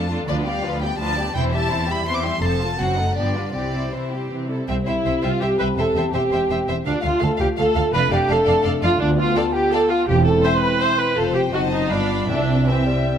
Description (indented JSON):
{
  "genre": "quick classical-period movement for symphony orchestra",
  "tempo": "166 BPM",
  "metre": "3/4",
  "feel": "rubato",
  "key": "C major",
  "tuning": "A4 = 440 Hz",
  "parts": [
    { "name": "warm chamber violin section", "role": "melody", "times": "0.0-13.2 s", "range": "C5 to D6", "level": "-29 LUFS", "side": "left 2 dB", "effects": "none" },
    { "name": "warm studio violin section", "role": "second line", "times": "0.0-13.2 s", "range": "D4 to F5", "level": "-28 LUFS", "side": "left 3 dB", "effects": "none" },
    { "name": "rich chamber viola section", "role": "accompaniment", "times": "0.0-13.1 s", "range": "E3 to C5", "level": "-22 LUFS", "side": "right 1 dB", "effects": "none" },
    { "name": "warm chamber cello section", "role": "bass", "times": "0.0-13.2 s", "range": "C2 to C3", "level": "-26 LUFS", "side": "right 1 dB", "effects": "none" },
    { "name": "warm studio double bass section", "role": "bass", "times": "0.3-13.2 s", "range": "E1 to D2", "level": "-25 LUFS", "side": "right 3 dB", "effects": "none" },
    { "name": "mellow hollow small flute group", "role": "second line", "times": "4.7-13.1 s", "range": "C5 to C6", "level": "-26 LUFS", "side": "equal", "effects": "none" },
    { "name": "mellow French horn section", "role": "sustained chords", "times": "4.7-13.2 s", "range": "A3 to G4", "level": "-25 LUFS", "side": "left 4 dB", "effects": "none" },
    { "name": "timpani", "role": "percussion", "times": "4.7-5.2, 12.3-12.8 s", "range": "C3", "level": "-29 LUFS", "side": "left 2 dB", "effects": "none" },
    { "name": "clear bassoon", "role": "accompaniment", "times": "12.7-13.2 s", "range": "E3 to G3", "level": "-26 LUFS", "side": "right 1 dB", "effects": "none" }
  ],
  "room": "moderate scoring stage reverb, RT60 1.7 s",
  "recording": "close, detailed microphones",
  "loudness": "-18 LUFS",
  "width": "side -8 dB against mid",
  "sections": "0.0-4.7 A section; 4.7-13.2 A section",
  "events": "none",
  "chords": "0.3 G7/D; 1.4 C/E; 2.4 F; 2.8 F#dim7; 3.2 G7; 3.5 C; 5.8 C/E; 6.9 Dm; 7.9 Dm/F; 9.0 G7/D; 10.1 C/E; 11.2 F; 11.5 F#dim7; 11.9 G7; 12.3 C",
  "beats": "| 0.28 0.64 0.99 | 1.35 1.71 2.07 | 2.43 2.80 3.17 | 3.54 3.92 4.30 | 4.68 5.04 5.41 | 5.77 6.14 6.50 | 6.86 7.22 7.58 | 7.94 8.30 8.66 | 9.01 9.37 9.72 | 10.08 10.44 10.80 | 11.17 11.54 11.90 | 12.29 12.67 13.06"
}